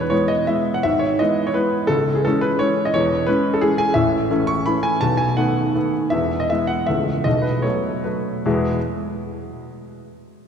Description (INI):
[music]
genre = classical, romantic triple-time dance for piano with dotted rhythms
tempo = 135-185 BPM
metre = 3/4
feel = rubato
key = E major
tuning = A4 = 441 Hz
[part]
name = clear grand piano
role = solo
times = 0.0-8.8 s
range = C#1 to C#6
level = -18 LUFS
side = equal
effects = none
[sound]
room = wet church reverb, RT60 3.7 s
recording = recorded in a church or concert hall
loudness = -17 LUFS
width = side -7 dB against mid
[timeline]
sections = 0.0-8.5 A section; 8.5-9.7 B section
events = slowing down 5.6-8.5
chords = 0.0 E; 0.8 E/G#; 1.9 C#m; 2.9 C#m/E; 4.0 A; 5.0 B7; 6.1 E; 6.9 A/C#; 7.3 B5; 8.5 E